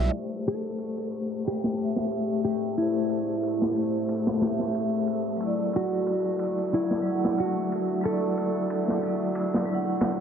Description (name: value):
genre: trip hop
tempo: 91 BPM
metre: 4/4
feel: swing 55% on 16ths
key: A minor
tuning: A4 = 442 Hz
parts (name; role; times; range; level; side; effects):
- vibraphone with medium hard mallets; accompaniment; 0.0-10.2 s; F#3 to F#5; -28 LUFS; left 1 dB; tremolo, low-pass filter, tape echo
- flickering grainy texture; texture; 0.0-10.2 s; G3 to A4; -38 LUFS; left 2 dB; none
- deep dark ambient pad; sustained chords; 1.0-10.2 s; A3 to E5; -34 LUFS; left 2 dB; chorus, built-in reverb
- crunchy breakbeat drum kit; drums; 0.1-10.2 s; hi-hat, ride cymbal, snare drum; -34 LUFS; equal; low-pass filter on kick, low-pass filter on cymbals, low-pass filter on hats, low-pass filter on snare, low-pass filter on room
- mellow electric guitar; melody; 0.5-10.0 s; E4 to A4; -29 LUFS; right 1 dB; analog chorus, tape echo
room: moderate echo chamber reverb, RT60 2.3 s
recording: dark, warm production, low-pass filter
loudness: -24 LUFS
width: side -7 dB against mid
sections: 0.1-10.2 A section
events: none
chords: 0.1 Am7; 5.4 Dadd9